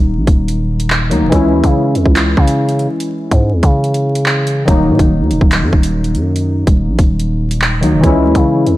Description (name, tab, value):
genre	hip hop, drill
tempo	143 BPM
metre	4/4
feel	half-time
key	Eb phrygian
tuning	A4 = 440 Hz
part	warbly lo-fi synth keys	accompaniment	0.0-8.8 s	Eb3 to Fb4	-15 LUFS	left 1 dB	chorus, low-pass filter
part	growling 808-style bass	bass	0.0-8.8 s	Eb1 to Db3	-15 LUFS	equal	none
part	drill drum kit	drums	0.3-8.8 s	handclaps, hi-hat, kick drum	-13 LUFS	equal	none
room	moderate plate reverb, RT60 2.0 s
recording	dreamy mix soaked in reverb, vinyl crackle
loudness	-11 LUFS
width	side -16 dB against mid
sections	0.0-8.8 A section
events	none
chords	0.0 Ebm; 1.3 Dbm; 4.7 Ebm; 8.0 Dbm